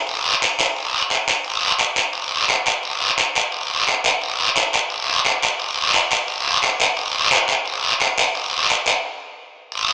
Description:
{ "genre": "latin", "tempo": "174 BPM", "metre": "4/4", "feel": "straight", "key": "none", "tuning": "none", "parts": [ { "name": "guiro", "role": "percussion", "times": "0.1-9.9 s", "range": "none", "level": "-16 LUFS", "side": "equal", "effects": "none" } ], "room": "moderate plate reverb, RT60 2.9 s", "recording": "heard from further back in the room, small speaker sound", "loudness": "-16 LUFS", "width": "side -24 dB against mid", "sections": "0.0-9.7 A section", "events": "break 9.0-9.7", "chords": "none", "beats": "| 0.07 0.41 0.76 1.10 | 1.45 1.80 2.14 2.49 | 2.83 3.18 3.52 3.87 | 4.21 4.55 4.90 5.24 | 5.59 5.93 6.28 6.62 | 6.96 7.31 7.65 8.00 | 8.34 8.69 9.03 9.38 | 9.72" }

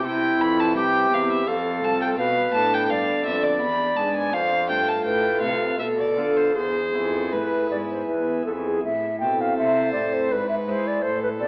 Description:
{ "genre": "classical, baroque-style sonata movement with continuo", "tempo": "82 BPM", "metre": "3/4", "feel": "straight", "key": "A minor", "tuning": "A4 = 439 Hz", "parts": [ { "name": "rich violin", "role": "melody", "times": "0.0-11.5 s", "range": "A4 to B5", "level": "-28 LUFS", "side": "equal", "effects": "none" }, { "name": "bright baroque flute", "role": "second line", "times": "0.0-11.5 s", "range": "E4 to G5", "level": "-26 LUFS", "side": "equal", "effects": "none" }, { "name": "pipe organ, sparkling flutes", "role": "accompaniment", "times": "0.0-11.5 s", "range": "C2 to B4", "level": "-30 LUFS", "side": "equal", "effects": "none" }, { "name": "warm cello", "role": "bass", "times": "0.0-11.5 s", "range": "C2 to G#3", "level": "-33 LUFS", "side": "equal", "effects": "none" } ], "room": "wet recital hall reverb, RT60 1.5 s", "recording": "AM radio sound", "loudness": "-23 LUFS", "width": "mono", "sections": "0.0-8.8 A section; 8.8-11.5 A section", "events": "none", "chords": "0.0 Cmaj7; 1.5 F; 2.2 Bm7b5; 3.6 E7; 4.3 F; 5.8 Bm7b5; 6.6 E; 8.8 Am; 10.3 E/G#", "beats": "| 0.03 0.74 1.46 | 2.17 2.89 3.61 | 4.33 5.06 5.80 | 6.56 7.32 8.08 | 8.84 9.58 10.31 | 11.04" }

